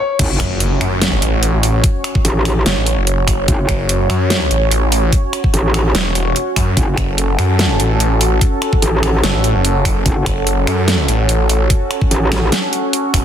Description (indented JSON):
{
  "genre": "heavy wobble dubstep",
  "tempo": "146 BPM",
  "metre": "4/4",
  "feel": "swing 53% on 16ths, half-time",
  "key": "F# minor",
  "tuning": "A4 = 440 Hz",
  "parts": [
    { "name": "supersaw pad", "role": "sustained chords", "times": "0.2-13.2 s", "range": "C#4 to C#5", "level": "-20 LUFS", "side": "right 1 dB", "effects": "phaser, sidechain pumping, low-pass filter" },
    { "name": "metallic wobble bass", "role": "bass", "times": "0.2-12.5 s", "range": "F#1 to A1", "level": "-15 LUFS", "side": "equal", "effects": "chorus, overdrive" },
    { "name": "dubstep drum kit", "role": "drums", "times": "0.2-13.2 s", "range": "crash cymbal, finger snaps, hi-hat, snare drum", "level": "-19 LUFS", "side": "right 1 dB", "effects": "none" },
    { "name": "electronic kick drum", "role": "drums", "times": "0.2-13.2 s", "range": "none", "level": "-16 LUFS", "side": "equal", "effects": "none" },
    { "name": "impact", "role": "sound effects", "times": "0.2-1.8 s", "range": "none", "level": "-26 LUFS", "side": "equal", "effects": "none" },
    { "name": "snarling distorted saw bass", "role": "bass", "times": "0.4-13.2 s", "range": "E1 to F#2", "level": "-15 LUFS", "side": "equal", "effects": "distortion, overdrive" }
  ],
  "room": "light reverb",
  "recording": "dense, heavily limited modern master",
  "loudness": "-13 LUFS",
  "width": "side -9 dB against mid",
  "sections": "0.2-13.2 A section",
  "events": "break 0.0; drop 0.2-13.2; impact 0.2-1.8",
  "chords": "0.2 F#5"
}